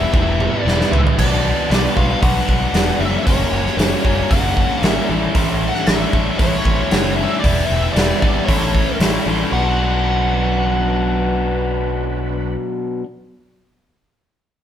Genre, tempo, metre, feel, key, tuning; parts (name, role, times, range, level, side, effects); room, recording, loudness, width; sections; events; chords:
blues rock power trio and southern rock; 115 BPM; 4/4; straight; B minor; A4 = 440 Hz
fuzz lead guitar; melody; 0.0-12.6 s; C#5 to F#5; -23 LUFS; left 2 dB; wah, distortion
overdriven tonewheel organ; sustained chords; 0.0-12.5 s; G3 to C#5; -31 LUFS; right 5 dB
biting overdriven guitar; riff; 0.0-13.1 s; F#2 to E4; -20 LUFS; left 1 dB
growling picked electric bass; bass; 0.0-12.5 s; E1 to C#2; -21 LUFS; equal; overdrive
big rock drum kit; drums; 0.1-9.1 s; crash cymbal, hi-hat, kick drum, snare drum, toms; -18 LUFS; equal
moderate stone room reverb, RT60 1.2 s; band playing live in one room; -15 LUFS; side -10 dB against mid
0.0-9.5 A section; 9.5-13.7 B section
drum fill 0.1-1.2
0.0 Em; 1.2 Bm; 3.0 F#; 5.1 A; 7.4 Em; 8.5 A; 9.5 Bm